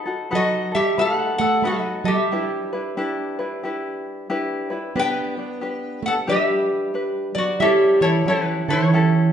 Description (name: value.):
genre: Hawaiian.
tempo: 91 BPM.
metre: 4/4.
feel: swing 62% on 8ths.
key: E minor, G major from 5.0 s.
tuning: A4 = 440 Hz.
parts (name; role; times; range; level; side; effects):
tenor ukulele; accompaniment; 0.0-9.3 s; C#4 to B4; -25 LUFS; left 2 dB; none.
fingerpicked plugged-in steel-string acoustic guitar; second line; 0.3-9.3 s; E3 to B3; -22 LUFS; right 4 dB; none.
lap resonator guitar; melody; 0.4-9.3 s; E4 to G5; -22 LUFS; left 2 dB; none.
room: wet recital hall reverb, RT60 1.5 s.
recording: recorded in a church or concert hall, nothing above 10.7 kHz.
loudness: -19 LUFS.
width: side -8 dB against mid.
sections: 0.0-5.0 A section; 5.0-9.3 B section.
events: none.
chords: 0.0 B7; 2.3 Em7; 5.0 G; 7.6 A7.